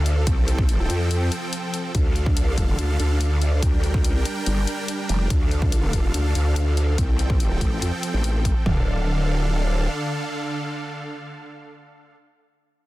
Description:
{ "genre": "heavy wobble dubstep", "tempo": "143 BPM", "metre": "4/4", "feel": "half-time", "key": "D minor", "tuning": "A4 = 440 Hz", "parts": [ { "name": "supersaw chords", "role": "sustained chords", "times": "0.0-12.2 s", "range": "D3 to G5", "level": "-28 LUFS", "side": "right 1 dB", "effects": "sidechain pumping" }, { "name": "growl bass", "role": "bass", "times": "0.0-9.9 s", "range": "D1 to F2", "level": "-21 LUFS", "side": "equal", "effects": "chorus, overdrive" }, { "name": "electronic hi-hat", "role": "drums", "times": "0.1-8.5 s", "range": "none", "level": "-32 LUFS", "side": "left 4 dB", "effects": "none" }, { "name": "dubstep drum kit", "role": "drums", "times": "0.3-8.8 s", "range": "kick drum, toms", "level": "-22 LUFS", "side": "equal", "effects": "none" } ], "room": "little or no reverb", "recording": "dense, heavily limited modern master", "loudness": "-20 LUFS", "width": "side -17 dB against mid", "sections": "0.0-8.7 A section; 8.7-12.0 B section", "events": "none", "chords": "0.3 Fadd9; 1.9 Dm; 3.6 Gm; 5.3 Dm; 7.0 Fadd9; 8.7 Dm" }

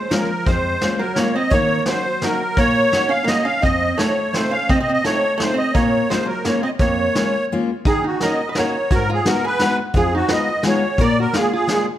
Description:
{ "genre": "musette waltz", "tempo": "171 BPM", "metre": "3/4", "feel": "straight", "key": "Bb minor, Eb minor from 7.8 s", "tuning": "A4 = 440 Hz", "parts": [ { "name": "musette accordion", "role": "melody", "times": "0.0-11.9 s", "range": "Gb4 to F5", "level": "-20 LUFS", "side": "right 1 dB", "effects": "none" }, { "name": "archtop guitar, miked and amplified", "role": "second line", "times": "0.0-11.9 s", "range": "F3 to Cb5", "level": "-24 LUFS", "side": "right 3 dB", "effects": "none" }, { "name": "picked steel-string acoustic guitar", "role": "accompaniment", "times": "0.1-11.9 s", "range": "F2 to Gb4", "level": "-23 LUFS", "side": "left 3 dB", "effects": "none" }, { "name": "vintage brush drum kit", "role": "drums", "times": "0.1-11.8 s", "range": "hi-hat, kick drum, snare drum", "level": "-22 LUFS", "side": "equal", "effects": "none" } ], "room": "moderate recital hall reverb, RT60 1.4 s", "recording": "none", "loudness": "-16 LUFS", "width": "side -12 dB against mid", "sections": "0.0-7.8 A section; 7.8-12.0 B section", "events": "break 7.5-7.8", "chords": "0.0 Bbm7; 1.5 Ebm7; 3.6 F7; 5.7 Bbm7; 7.8 Ebm7; 8.9 Abm7; 9.9 Fm7b5; 11.0 Bb7" }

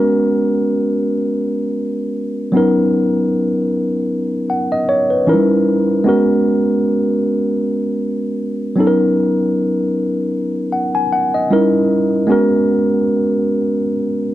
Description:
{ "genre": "R&B", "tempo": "77 BPM", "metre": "4/4", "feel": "swing 56% on 16ths", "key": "G# minor", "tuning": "A4 = 444 Hz", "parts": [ { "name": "tine electric piano", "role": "solo", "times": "0.0-14.3 s", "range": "E3 to G#5", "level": "-14 LUFS", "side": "equal", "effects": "none" } ], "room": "little or no reverb", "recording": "dry, close 1970s-style studio recording", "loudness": "-14 LUFS", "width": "side -14 dB against mid", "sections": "0.0-14.3 A section", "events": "none", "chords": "0.0 G#m11; 2.5 Bmaj9; 5.3 D#7b9; 6.0 G#m11; 8.8 Bmaj9; 11.5 D#7b9; 12.3 G#m11" }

